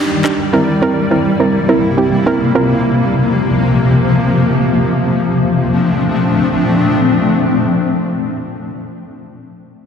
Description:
pop; free time; Bb major; A4 = 439 Hz
soft round pluck; accompaniment; 0.0-2.8 s; C4 to Bb4; -15 LUFS; right 3 dB; chorus
granular cloud pad; sustained chords; 0.1-8.2 s; Bb2 to D5; -13 LUFS; left 2 dB; built-in reverb
downlifter; sound effects; 0.0-0.5 s; barely audible
moderate plate reverb, RT60 2.8 s; dense, heavily limited modern master; -11 LUFS; side -7 dB against mid
0.0-5.1 A section; 5.1-7.5 B section
0.0 Ebmaj7; 0.5 C7; 2.5 Fsus4; 5.1 Bbmaj7

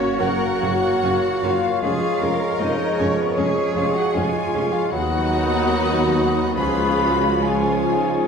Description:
classical; 64-79 BPM; 4/4; rubato; A4 = 441 Hz
clear clarinet; second line; 0.0-8.3 s; B3 to B4; -30 LUFS; left 2 dB
dark cor anglais; second line; 0.0-8.3 s; G#4 to C#5; -31 LUFS; left 1 dB
mellow hollow concert flute; second line; 0.0-8.3 s; B4 to B5; -26 LUFS; left 3 dB
warm studio violin section; second line; 0.0-8.3 s; B4 to B5; -30 LUFS; left 2 dB
dark bassoon; accompaniment; 0.0-8.3 s; E#3 to A#3; -29 LUFS; right 1 dB
mellow French horn section; sustained chords; 0.0-8.3 s; B3 to B4; -28 LUFS; left 2 dB
warm trombone section; sustained chords; 0.0-8.3 s; D#3 to A#3; -29 LUFS; right 3 dB
dark trumpet section; stabs; 0.0-8.3 s; C#5 to D#5; -30 LUFS; right 3 dB
warm studio cello section; bass; 0.0-8.3 s; D#4 to A#4; -28 LUFS; right 2 dB
warm studio violin section; melody; 0.2-8.3 s; C#4 to F#4; -30 LUFS; left 2 dB
warm studio viola section; accompaniment; 0.2-8.3 s; F#3 to C#4; -30 LUFS; left 1 dB
mellow tuba; bass; 0.2-8.3 s; E#1 to D#2; -27 LUFS; equal
warm studio double bass section; bass; 0.2-8.3 s; C#2 to F#2; -29 LUFS; right 3 dB
wet scoring stage reverb, RT60 1.6 s; recorded in a church or concert hall; -18 LUFS; side -6 dB against mid
0.0-8.3 A section
0.0 F#; 1.8 C#/E#; 4.9 B/D#; 6.6 C#7

